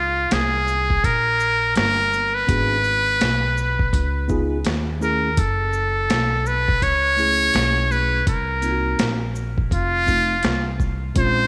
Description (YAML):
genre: hip hop, jazz-hop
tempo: 83 BPM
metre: 4/4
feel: swing 60% on 16ths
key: unclear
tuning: A4 = 440 Hz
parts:
  - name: trumpet with metal mute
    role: melody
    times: 0.0-11.5 s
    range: F4 to Db5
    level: -22 LUFS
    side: equal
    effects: tape echo
  - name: upright bass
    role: bass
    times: 0.0-11.5 s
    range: F1 to Eb2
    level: -27 LUFS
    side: equal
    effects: none
  - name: boom bap sampler-style drum kit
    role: drums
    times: 0.3-11.4 s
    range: hi-hat, kick drum, shaker, snare drum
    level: -26 LUFS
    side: equal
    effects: none
  - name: mellow tine electric piano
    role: accompaniment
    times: 2.5-11.4 s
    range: Ab3 to Ab4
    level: -30 LUFS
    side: equal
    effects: none
room: moderate echo chamber reverb, RT60 2.0 s, digital ambience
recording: none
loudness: -20 LUFS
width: mono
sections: 0.0-11.5 A section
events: none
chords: 0.0 Db5; 2.5 Abm7b5; 3.9 Db7; 5.4 Gbm9; 8.3 Cm7b5; 9.7 F7